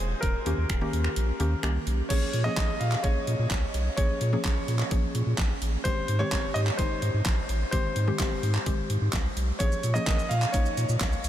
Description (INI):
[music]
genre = dance-pop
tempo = 128 BPM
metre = 4/4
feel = straight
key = Bb dorian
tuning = A4 = 440 Hz
[part]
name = clear concert grand piano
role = melody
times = 0.0-11.3 s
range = Ab4 to F5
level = -32 LUFS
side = equal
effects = ping-pong delay
[part]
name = warm sub bass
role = bass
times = 0.0-11.3 s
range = Eb1 to Bb2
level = -28 LUFS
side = equal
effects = sidechain pumping
[part]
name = pop drum kit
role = drums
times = 0.2-11.3 s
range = crash cymbal, finger snaps, handclaps, hi-hat, kick drum, shaker, snare drum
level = -29 LUFS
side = equal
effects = overdrive
[part]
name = mallet-like synth pluck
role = accompaniment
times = 0.5-11.0 s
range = Eb3 to Bb4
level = -33 LUFS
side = left 1 dB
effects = chorus, sidechain pumping
[sound]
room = moderate huge ambient reverb, RT60 7.6 s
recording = dreamy mix soaked in reverb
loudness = -24 LUFS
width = side -12 dB against mid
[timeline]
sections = 0.0-2.1 A section; 2.1-11.3 B section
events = kick muted 1.2-2.1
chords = 0.2 Eb7; 2.1 Bbm7; 5.9 Abmaj7; 9.6 Bbm7